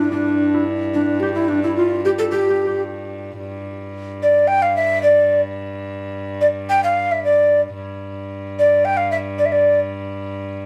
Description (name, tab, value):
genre	medieval dance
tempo	110 BPM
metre	2/4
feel	straight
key	unclear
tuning	A4 = 439 Hz
part	mellow hollow tenor recorder	melody	0.0-9.8 s	D4 to G5	-18 LUFS	equal	none
part	concert harp	second line	0.0-5.0 s	D4 to A4	-27 LUFS	equal	none
part	warm viola da gamba	drone	0.0-10.7 s	G2	-30 LUFS	equal	none
room	moderate studio ambience, RT60 0.5 s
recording	band playing live in one room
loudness	-18 LUFS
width	mono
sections	0.0-3.4 A section; 3.4-10.7 B section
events	none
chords	none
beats	| 0.12 0.67 | 1.21 1.76 | 2.30 2.85 | 3.39 3.94 | 4.48 5.03 | 5.57 6.12 | 6.66 7.21 | 7.75 8.30 | 8.85 9.39 | 9.94 10.48